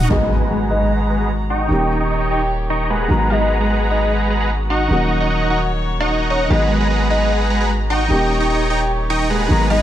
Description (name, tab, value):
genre	future bass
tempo	150 BPM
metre	4/4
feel	half-time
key	G# minor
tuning	A4 = 440 Hz
part	soft octave-layered synth lead	melody	0.0-9.8 s	C#5 to A#5	-23 LUFS	left 2 dB	chorus, tremolo, digital delay
part	dark chamber string section	sustained chords	0.0-9.8 s	D#3 to A#5	-29 LUFS	equal	none
part	dense compressed supersaw	riff	0.0-9.8 s	G#3 to C#6	-19 LUFS	right 1 dB	low-pass filter
part	long sustained 808-style bass	bass	0.0-9.8 s	D#1 to G#1	-20 LUFS	equal	none
part	felt-muted upright piano	accompaniment	0.1-9.8 s	D#3 to G4	-24 LUFS	right 1 dB	none
part	impact	sound effects	0.1-1.7 s	none	-24 LUFS	equal	none
room	light reverb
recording	none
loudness	-15 LUFS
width	side -11 dB against mid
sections	0.1-9.8 A section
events	impact 0.1-1.7; filter sweep on supersaw synth 0.1-9.8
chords	0.1 G#m9; 1.7 D#7; 3.1 G#m9; 4.9 D#m7; 6.5 G#m9; 8.1 D#7